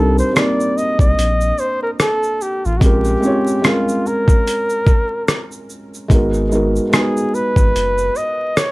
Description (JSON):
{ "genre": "lo-fi hip hop", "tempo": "73 BPM", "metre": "4/4", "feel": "swing 57% on 16ths", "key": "unclear", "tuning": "A4 = 439 Hz", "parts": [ { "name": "breathy flugelhorn", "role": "melody", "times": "0.0-8.7 s", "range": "F4 to Eb5", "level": "-19 LUFS", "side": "equal", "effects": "none" }, { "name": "felt-muted upright piano", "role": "accompaniment", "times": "0.0-8.7 s", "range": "G3 to Db5", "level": "-19 LUFS", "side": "equal", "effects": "none" }, { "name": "soft dub sub bass", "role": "bass", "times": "0.0-8.1 s", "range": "Gb1 to C2", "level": "-19 LUFS", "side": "equal", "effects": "none" }, { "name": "dusty soul sampler-style drum kit", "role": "drums", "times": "0.2-8.7 s", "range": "hi-hat, kick drum, rim click, shaker", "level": "-15 LUFS", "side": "equal", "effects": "none" } ], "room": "moderate studio reverb, RT60 0.6 s", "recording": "vinyl crackle", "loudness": "-14 LUFS", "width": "side -21 dB against mid", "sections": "0.0-8.7 A section", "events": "none", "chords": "0.0 Cm7; 2.8 Bbm7; 6.1 Abm7" }